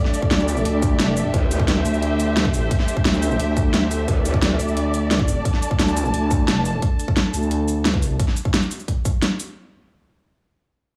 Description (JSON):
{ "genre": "dark technical drum and bass", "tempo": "175 BPM", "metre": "4/4", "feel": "straight", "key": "unclear", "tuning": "A4 = 441 Hz", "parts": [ { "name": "rich studio string section", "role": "sustained chords", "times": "0.0-6.8 s", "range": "D3 to D5", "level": "-30 LUFS", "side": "equal", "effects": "vintage 12-bit sampler grit, sidechain pumping" }, { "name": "dark chamber string section", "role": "texture", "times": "0.0-8.2 s", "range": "D4 to A5", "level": "-31 LUFS", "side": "equal", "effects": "sidechain pumping" }, { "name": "dubstep drum kit", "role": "drums", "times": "0.1-9.5 s", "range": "hi-hat, shaker, snare drum", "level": "-25 LUFS", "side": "equal", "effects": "studio reverb" }, { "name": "electronic kick drum", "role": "drums", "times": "0.2-9.1 s", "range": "none", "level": "-23 LUFS", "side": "equal", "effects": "studio reverb" }, { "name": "growling FM bass", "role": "bass", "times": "0.3-8.2 s", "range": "F1 to D2", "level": "-24 LUFS", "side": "equal", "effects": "none" }, { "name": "growl bass", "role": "bass", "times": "1.3-1.8, 4.1-4.6 s", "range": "D2", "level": "-24 LUFS", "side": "equal", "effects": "chorus, overdrive, sidechain pumping" } ], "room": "light reverb, digital ambience", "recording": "small room ambience", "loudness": "-20 LUFS", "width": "mono", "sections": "0.0-9.6 A section", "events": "drop 0.0-9.6", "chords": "0.0 D5" }